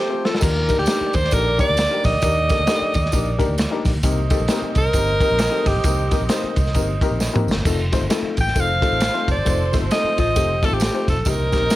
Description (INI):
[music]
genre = uptempo 1960s-style soul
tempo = 133 BPM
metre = 4/4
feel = swing 60% on 8ths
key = unclear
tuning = A4 = 441 Hz
[part]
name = edgy alto saxophone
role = melody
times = 0.0-11.8 s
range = G4 to G5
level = -21 LUFS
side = equal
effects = none
[part]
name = mellow horn section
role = second line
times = 0.0-11.8 s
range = Bb3 to Eb5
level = -28 LUFS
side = right 4 dB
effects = none
[part]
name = archtop guitar, miked and amplified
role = riff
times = 0.0-0.7, 10.2-11.2 s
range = F4 to A4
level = -28 LUFS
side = left 7 dB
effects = tube saturation
[part]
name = dark baby grand piano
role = accompaniment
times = 0.1-11.8 s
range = C3 to C5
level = -25 LUFS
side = left 5 dB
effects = none
[part]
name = crunchy breakbeat drum kit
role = drums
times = 0.3-11.8 s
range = crash cymbal, hi-hat, kick drum, ride cymbal, snare drum, toms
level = -21 LUFS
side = equal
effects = none
[part]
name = fingered electric bass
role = bass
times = 0.4-11.7 s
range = F1 to Eb2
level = -23 LUFS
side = equal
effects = none
[part]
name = tambourine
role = percussion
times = 0.4-11.8 s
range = none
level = -35 LUFS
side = right 6 dB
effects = none
[sound]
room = light reverb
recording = none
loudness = -17 LUFS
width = side -15 dB against mid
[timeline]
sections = 0.4-11.8 A section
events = break 0.0-0.4; drum fill 0.0-0.4, 7.2-7.7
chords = 0.4 Ebmaj7; 4.0 Cm7; 7.7 F7